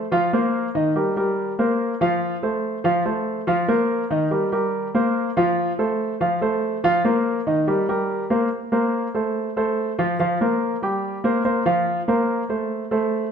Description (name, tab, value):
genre	latin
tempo	143 BPM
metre	4/4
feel	straight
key	unclear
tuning	A4 = 438 Hz
part	warm concert grand piano	solo	0.0-13.3 s	Eb3 to G5	-19 LUFS	equal	none
room	moderate large studio reverb, RT60 1.3 s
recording	minimal, uncompressed stereo recording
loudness	-19 LUFS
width	side -7 dB against mid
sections	0.0-8.5 A section; 8.5-13.3 B section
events	none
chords	0.1 Bbsus2; 1.0 Gmadd11; 1.8 Bbsus2; 2.6 F; 3.5 Bbsus2; 4.3 Gmadd11; 5.2 Bbsus2; 6.0 F; 6.8 Bbsus2; 7.7 Gmadd11; 8.5 Bbsus2; 9.4 F; 10.2 Fsus24; 11.9 Bbsus2; 12.7 F (rootless)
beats	| 0.11 0.53 0.95 1.38 | 1.79 2.21 2.64 3.06 | 3.48 3.90 4.32 4.74 | 5.16 5.58 6.00 6.42 | 6.84 7.26 7.68 8.10 | 8.52 8.93 9.35 9.77 | 10.19 10.61 11.03 11.45 | 11.87 12.29 12.70 13.12